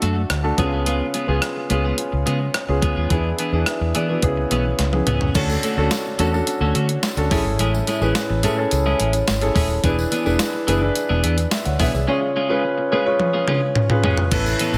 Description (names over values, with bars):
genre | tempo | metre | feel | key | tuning
1980s-style pop | 107 BPM | 4/4 | straight | unclear | A4 = 439 Hz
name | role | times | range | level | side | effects
warm concert grand piano | accompaniment | 0.0-14.8 s | A2 to F#5 | -24 LUFS | equal | none
clean electric guitar | riff | 0.0-14.8 s | E3 to A4 | -28 LUFS | equal | subtle chorus, delay
vintage muted fingered electric bass | bass | 0.0-14.8 s | D#1 to E3 | -24 LUFS | equal | none
clean 12-bit digital drum machine | drums | 0.0-14.7 s | crash cymbal, hi-hat, kick drum, rim click, snare drum, toms | -25 LUFS | equal | none
tambourine | percussion | 5.3-14.8 s | none | -39 LUFS | equal | none
room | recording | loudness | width
light reverb | none | -20 LUFS | mono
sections
0.0-5.3 A section; 5.3-14.3 B section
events
drum fill 4.8-5.3, 13.2-14.3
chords
0.0 D; 0.6 C#7; 3.1 E7; 4.2 C#m7; 5.3 Dmaj7; 7.3 Amaj7; 9.8 E7; 12.1 C#